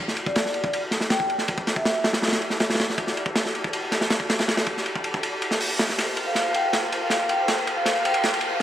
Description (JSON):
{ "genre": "drum and bass, jungle", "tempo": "160 BPM", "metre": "4/4", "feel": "straight", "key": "unclear", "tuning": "A4 = 435 Hz", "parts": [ { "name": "clear studio string section", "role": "sustained chords", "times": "0.0-8.6 s", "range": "E4 to D5", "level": "-31 LUFS", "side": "left 1 dB", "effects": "low-pass filter" }, { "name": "crunchy breakbeat drum kit", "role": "drums", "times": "0.1-8.6 s", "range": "hi-hat, kick drum, ride cymbal, snare drum", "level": "-23 LUFS", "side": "equal", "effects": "high-pass filter on kick, high-pass filter on cymbals, high-pass filter on hats, high-pass filter on snare, high-pass filter on room" }, { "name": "vibraphone with soft mallets", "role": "melody", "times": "0.3-2.0, 6.3-8.6 s", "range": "D5 to G5", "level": "-26 LUFS", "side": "equal", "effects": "vintage 12-bit sampler grit, low-pass filter, dub echo" }, { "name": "riser", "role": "sound effects", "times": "6.7-8.6 s", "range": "none", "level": "-36 LUFS", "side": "right 1 dB", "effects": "none" } ], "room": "moderate digital room reverb, RT60 1.2 s, studio reverb", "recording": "vinyl crackle", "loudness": "-21 LUFS", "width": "side -11 dB against mid", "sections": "0.0-8.6 A section", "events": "build-up 0.0-8.6; filter sweep on string section 0.0-8.6; drum fill 6.0-8.6", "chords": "0.0 Em11; 6.0 Gm11" }